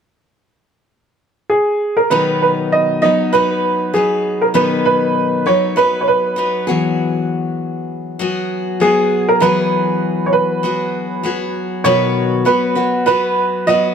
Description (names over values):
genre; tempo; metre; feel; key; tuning
acoustic pop; 99 BPM; 4/4; swing 55% on 16ths; B major; A4 = 440 Hz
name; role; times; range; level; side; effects
clear upright piano; melody; 1.5-13.9 s; G#4 to D#5; -15 LUFS; right 3 dB; none
picked steel-string acoustic guitar; accompaniment; 2.1-13.9 s; B2 to B4; -18 LUFS; left 4 dB; none
room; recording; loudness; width
moderate plate reverb, RT60 2.7 s; none; -14 LUFS; side -7 dB against mid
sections
0.0-2.1 A section; 2.1-11.8 B section; 11.8-13.9 C section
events
none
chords
0.0 N.C.; 2.1 B; 6.7 Eadd9; 11.8 B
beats
0.28 0.89 1.50 | 2.11 2.72 3.33 3.94 | 4.54 5.15 5.76 6.37 | 6.98 7.59 8.20 8.81 | 9.41 10.02 10.63 11.24 | 11.85 12.46 13.06 13.67